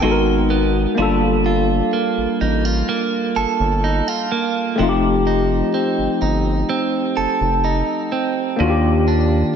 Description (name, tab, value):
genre	R&B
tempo	63 BPM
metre	4/4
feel	straight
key	unclear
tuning	A4 = 440 Hz
part	tine electric piano	accompaniment	0.0-9.6 s	A3 to Bb4	-20 LUFS	left 4 dB	analog chorus
part	clean electric guitar	arpeggios	0.0-9.6 s	Eb3 to A4	-20 LUFS	right 5 dB	diffuse ambient delay
part	round analog bass	bass	0.0-9.4 s	F1 to Eb2	-20 LUFS	equal	none
room	moderate lush hall reverb, RT60 2.0 s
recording	dreamy mix soaked in reverb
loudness	-16 LUFS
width	side -7 dB against mid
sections	0.0-9.6 A section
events	none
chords	0.0 Abm9; 1.0 Gm9; 4.8 F7; 8.6 Ebmaj7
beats	0.03 | 0.98 1.93 2.89 3.84 | 4.79 5.74 6.70 7.65 | 8.60 9.55